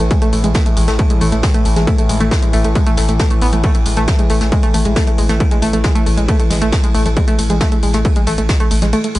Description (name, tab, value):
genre	driving peak-time techno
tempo	136 BPM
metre	4/4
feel	straight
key	unclear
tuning	A4 = 439 Hz
part	warbly dusty pluck	riff	0.0-9.2 s	G#3 to B3	-19 LUFS	equal	chorus, sidechain pumping, analog delay
part	saturated sub bass	bass	0.0-9.2 s	A1	-17 LUFS	equal	overdrive, sidechain pumping, low-pass filter
part	analog drone	drone	0.0-9.2 s	A2 to E3	-24 LUFS	left 1 dB	chorus, sidechain pumping
part	techno drum kit	drums	0.0-9.2 s	hi-hat, toms	-23 LUFS	left 1 dB	overdrive
part	electronic kick drum	drums	0.1-8.6 s	none	-15 LUFS	equal	overdrive
part	jazz brush drum kit	drums	0.1-9.1 s	ride cymbal, snare drum	-28 LUFS	right 1 dB	sidechain pumping on cymbals, high-pass filter on cymbals, high-pass filter on snare, high-pass filter on room
room	little or no reverb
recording	dry, gritty hardware recording, cassette tape, nothing above 10.8 kHz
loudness	-12 LUFS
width	side -17 dB against mid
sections	0.0-9.2 A section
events	kick drops out 8.9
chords	0.0 A5